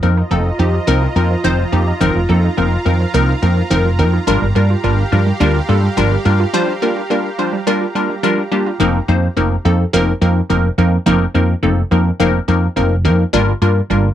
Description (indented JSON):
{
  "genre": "pop",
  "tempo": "106 BPM",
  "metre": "4/4",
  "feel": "straight",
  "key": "unclear",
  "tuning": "A4 = 440 Hz",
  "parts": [
    { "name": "wavetable chord stab", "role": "accompaniment", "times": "0.0-14.1 s", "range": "F3 to C5", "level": "-16 LUFS", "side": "left 1 dB", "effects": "phaser" },
    { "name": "supersaw pad", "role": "sustained chords", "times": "0.0-8.8 s", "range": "F4 to Bb5", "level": "-24 LUFS", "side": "right 2 dB", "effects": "none" },
    { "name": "wide unison pluck", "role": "arpeggios", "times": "0.0-8.7 s", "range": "Eb3 to F4", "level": "-24 LUFS", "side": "right 8 dB", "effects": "tape echo" },
    { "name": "woody fretless electric bass", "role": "bass", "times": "0.0-14.1 s", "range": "F1 to G2", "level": "-15 LUFS", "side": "equal", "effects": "none" }
  ],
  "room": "little or no reverb",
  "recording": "dry, close 1970s-style studio recording",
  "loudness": "-13 LUFS",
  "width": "side -11 dB against mid",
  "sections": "0.0-8.8 A section; 8.8-14.1 B section",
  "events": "break 6.5-8.8",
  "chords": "0.0 F7sus4; 4.3 Gm7; 8.8 F7sus4; 13.3 Gm7"
}